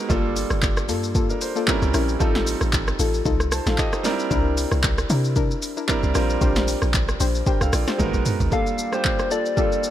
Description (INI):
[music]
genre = amapiano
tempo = 114 BPM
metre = 4/4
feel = swing 55% on 16ths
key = G minor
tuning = A4 = 440 Hz
[part]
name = clear concert grand piano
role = accompaniment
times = 0.0-9.9 s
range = G3 to A5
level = -26 LUFS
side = right 4 dB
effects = none
[part]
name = soft round pluck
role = stabs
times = 0.1-9.9 s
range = Bb3 to C5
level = -27 LUFS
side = left 6 dB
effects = chorus, tape echo
[part]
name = deep log drum bass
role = bass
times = 0.1-8.5 s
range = G1 to C3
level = -24 LUFS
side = equal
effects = none
[part]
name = deep house drum kit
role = drums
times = 0.1-9.9 s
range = handclaps, hi-hat, kick drum, rim click, shaker, snare drum, toms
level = -23 LUFS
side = equal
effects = none
[part]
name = soft struck synth lead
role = melody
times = 8.5-9.9 s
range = C5 to F5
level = -24 LUFS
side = left 2 dB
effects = chorus, tape echo
[sound]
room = little or no reverb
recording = none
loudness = -19 LUFS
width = side -12 dB against mid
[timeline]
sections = 0.0-8.5 A section; 8.5-9.9 B section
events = drop 0.0-8.5; drum fill 8.0-8.5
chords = 0.1 Gm9; 1.7 C7b9; 2.2 F7/A; 4.0 C9; 6.2 Bb69; 8.0 Abm9; 8.5 Gm9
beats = | 0.10 0.62 1.15 1.68 | 2.20 2.73 3.26 3.78 | 4.31 4.84 5.36 5.89 | 6.42 6.94 7.47 7.99 | 8.52 9.05 9.57